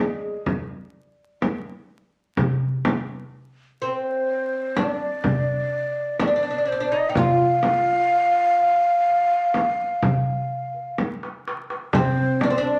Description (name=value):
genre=Arabic maqam ensemble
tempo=126 BPM (eighths)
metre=10/8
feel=straight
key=unclear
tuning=A4 = 441 Hz
part: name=breathy ney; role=melody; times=0.0-12.8 s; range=Ab4 to G5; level=-24 LUFS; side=equal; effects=none
part: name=oud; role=second line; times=0.0-12.8 s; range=Ab3 to F4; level=-27 LUFS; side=equal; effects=none
part: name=frame drum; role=percussion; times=0.5-12.6 s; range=none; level=-27 LUFS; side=equal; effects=none
part: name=darbuka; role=percussion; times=2.4-12.6 s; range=none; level=-29 LUFS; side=equal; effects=none
room=wet large studio reverb, RT60 0.8 s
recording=vinyl crackle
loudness=-22 LUFS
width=mono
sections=0.0-11.9 A section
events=drum fill 11.0-11.9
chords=none